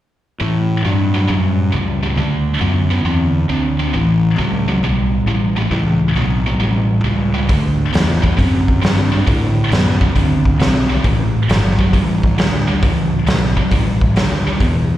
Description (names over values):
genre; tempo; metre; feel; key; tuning
blues rock power trio and southern rock; 135 BPM; 4/4; swing 67% on 8ths; unclear; A4 = 440 Hz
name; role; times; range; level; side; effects
tight distorted guitar; riff; 0.4-15.0 s; E2 to C4; -18 LUFS; equal; distortion
fuzz fingered electric bass; bass; 0.4-15.0 s; G1 to A2; -17 LUFS; equal; overdrive
raw garage drum kit; drums; 7.5-14.7 s; hi-hat, kick drum, snare drum; -16 LUFS; equal; none
room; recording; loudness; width
little or no reverb; live gig heard through the venue's PA, recital hall reverb; -13 LUFS; side -13 dB against mid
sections
0.4-15.0 A section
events
none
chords
0.4 A7; 2.2 D7; 3.9 A7; 7.5 D7; 11.1 A7